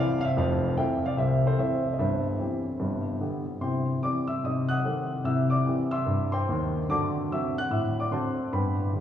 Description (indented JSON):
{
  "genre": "jazz, stride piano",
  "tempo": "147 BPM",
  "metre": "4/4",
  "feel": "swing 59% on 8ths",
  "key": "C major",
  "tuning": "A4 = 440 Hz",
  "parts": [
    { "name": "warm grand piano", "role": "solo", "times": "0.0-9.0 s", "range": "F1 to Gb6", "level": "-24 LUFS", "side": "left 1 dB", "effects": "none" }
  ],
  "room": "wet cathedral reverb, RT60 4.7 s",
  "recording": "recorded in a church or concert hall, studio ambience",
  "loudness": "-25 LUFS",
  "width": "side -10 dB against mid",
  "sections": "0.0-3.6 A section; 3.6-9.0 B section",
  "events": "none",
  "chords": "0.4 Fmaj7; 2.0 C/G; 2.8 G; 3.6 C; 4.4 Cdim7; 5.2 C; 6.9 D7",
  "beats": "| 0.35 0.76 1.17 1.58 | 1.98 2.39 2.80 3.21 | 3.62 4.02 4.43 4.84 | 5.25 5.66 6.07 6.48 | 6.89 7.30 7.71 8.11 | 8.52 8.93"
}